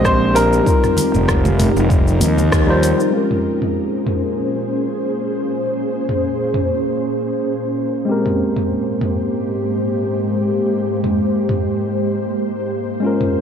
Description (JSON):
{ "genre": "sunset chillout", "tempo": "97 BPM", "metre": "4/4", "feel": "swing 55% on 16ths", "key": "Bb dorian", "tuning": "A4 = 439 Hz", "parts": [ { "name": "warm baby grand piano", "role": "melody", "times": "0.0-2.5 s", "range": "Bb4 to C5", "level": "-20 LUFS", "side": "left 1 dB", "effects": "analog delay" }, { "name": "tine electric piano", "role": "accompaniment", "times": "0.0-13.4 s", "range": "G3 to C5", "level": "-22 LUFS", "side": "left 1 dB", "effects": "auto-pan, low-pass filter, analog delay" }, { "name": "ethereal airy pad", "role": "sustained chords", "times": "0.0-13.4 s", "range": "Ab2 to C5", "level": "-19 LUFS", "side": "equal", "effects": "ensemble chorus, built-in reverb" }, { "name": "fuzz fingered electric bass", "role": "bass", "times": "0.0-2.9 s", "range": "F1 to Eb2", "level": "-17 LUFS", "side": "equal", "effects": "overdrive" }, { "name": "electronic kick drum", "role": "drums", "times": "0.0-2.7 s", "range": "none", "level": "-18 LUFS", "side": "equal", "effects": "none" }, { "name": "deep house drum kit", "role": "drums", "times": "0.1-13.3 s", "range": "cabasa, hi-hat, rim click, toms", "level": "-23 LUFS", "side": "equal", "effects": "low-pass filter on perc, low-pass filter on snare, low-pass filter on toms, low-pass filter on hats, low-pass filter on room" }, { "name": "congas", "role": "percussion", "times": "1.0-2.5 s", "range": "none", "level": "-24 LUFS", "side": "right 3 dB", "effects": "none" } ], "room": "moderate concert hall reverb, RT60 2.1 s", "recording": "dry, gritty hardware recording", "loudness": "-16 LUFS", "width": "side -8 dB against mid", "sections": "0.0-3.1 A section; 3.1-13.4 B section", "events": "band accent 2.5-2.8", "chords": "0.0 Abmaj9; 0.7 F9sus4; 3.1 Bbm7; 8.1 Abmaj9" }